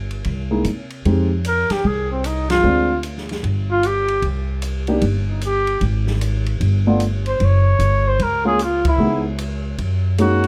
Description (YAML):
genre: jazz, small-group swing and bop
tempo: 151 BPM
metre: 4/4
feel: swing 64% on 8ths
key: unclear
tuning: A4 = 442 Hz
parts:
  - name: upright bass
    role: bass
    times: 0.0-10.5 s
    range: Gb1 to C3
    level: -22 LUFS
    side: equal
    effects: none
  - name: open jazz drum kit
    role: drums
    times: 0.1-10.5 s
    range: hi-hat, kick drum, ride cymbal, snare drum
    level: -31 LUFS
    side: equal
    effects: none
  - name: dark grand piano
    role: accompaniment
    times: 0.5-10.4 s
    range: G#3 to G4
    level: -21 LUFS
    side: equal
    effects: none
  - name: warm trumpet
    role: melody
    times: 1.5-10.5 s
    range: C4 to Db5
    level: -22 LUFS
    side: equal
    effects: plate reverb
room: light reverb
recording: none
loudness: -19 LUFS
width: mono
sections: 0.0-1.1 A section; 1.1-10.5 B section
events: band accent 2.4, 8.8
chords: 0.3 C7alt; 1.1 Fm9; 2.6 Dm7b5; 3.4 Fsus2/G; 4.2 C5; 5.8 N.C.; 6.6 G9; 7.4 Gb5; 9.0 Dbm9; 9.8 Gb